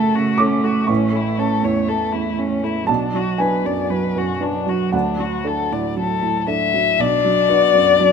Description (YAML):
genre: neoclassical piano and strings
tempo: 60 BPM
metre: 4/4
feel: rubato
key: B dorian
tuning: A4 = 440 Hz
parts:
  - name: muted violin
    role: melody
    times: 0.0-8.1 s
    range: C#4 to E5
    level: -19 LUFS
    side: left 8 dB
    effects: none
  - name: muted cello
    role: second line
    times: 0.0-8.1 s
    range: F#3 to F#4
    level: -23 LUFS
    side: right 3 dB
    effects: none
  - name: dark upright piano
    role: accompaniment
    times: 0.0-8.1 s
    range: A1 to D6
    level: -20 LUFS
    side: right 4 dB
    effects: none
room: moderate studio reverb, RT60 0.7 s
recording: minimal, uncompressed stereo recording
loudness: -16 LUFS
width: side -6 dB against mid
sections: 0.0-7.0 A section; 7.0-8.1 B section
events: none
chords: 0.0 F#m; 0.9 A; 2.9 Bm; 4.9 D; 7.0 Bm